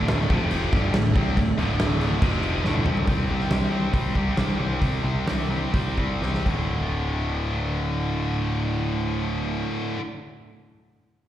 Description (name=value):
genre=hard rock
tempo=119-141 BPM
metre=4/4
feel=straight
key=D minor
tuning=A4 = 438 Hz
part: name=mellow tonewheel organ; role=sustained chords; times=0.0-3.1 s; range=F3 to E5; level=-35 LUFS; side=right 1 dB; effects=chorus vibrato, fast rotary speaker
part: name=heavy high-gain guitar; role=riff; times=0.0-10.0 s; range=D2 to C4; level=-26 LUFS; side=equal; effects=distortion, slapback echo
part: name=fuzz picked electric bass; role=bass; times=0.0-9.6 s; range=D1 to C2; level=-26 LUFS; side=equal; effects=overdrive
part: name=huge arena drum kit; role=drums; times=0.1-6.6 s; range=crash cymbal, hi-hat, kick drum, snare drum, toms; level=-25 LUFS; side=equal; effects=none
room=small room reverb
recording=live gig heard through the venue's PA, recital hall reverb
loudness=-22 LUFS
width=side -12 dB against mid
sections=0.0-3.1 A section; 3.1-6.7 B section; 6.7-10.7 C section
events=drum fill 2.6-3.1, 6.2-6.7; slowing down 3.1-6.7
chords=0.3 F5; 0.7 D5; 2.2 F5; 2.6 D5; 3.1 C5; 6.5 D5